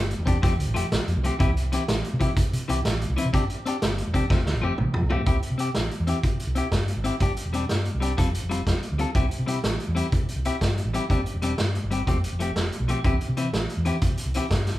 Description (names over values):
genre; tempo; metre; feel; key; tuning
highlife guitar band; 124 BPM (dotted quarters); 12/8; straight; C major; A4 = 440 Hz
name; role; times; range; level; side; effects
hollow-body short-scale fingered electric bass; bass; 0.0-14.8 s; E1 to C3; -27 LUFS; equal; none
vintage drum kit; drums; 0.1-14.7 s; hi-hat, kick drum, snare drum, toms; -26 LUFS; equal; none
clean electric guitar; accompaniment; 0.3-14.5 s; E3 to A4; -28 LUFS; left 3 dB; none
room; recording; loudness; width
moderate large studio reverb, RT60 1.1 s; band playing live in one room; -22 LUFS; side -15 dB against mid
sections
0.0-5.3 A section; 5.3-14.8 B section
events
drum fill 4.3-5.3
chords
0.4 Fadd9; 1.4 C; 3.3 Gsus4; 4.3 Fadd9; 5.3 C; 7.2 Gsus4; 8.2 Fadd9; 9.2 C; 11.1 Gsus4; 12.1 Fadd9; 13.0 C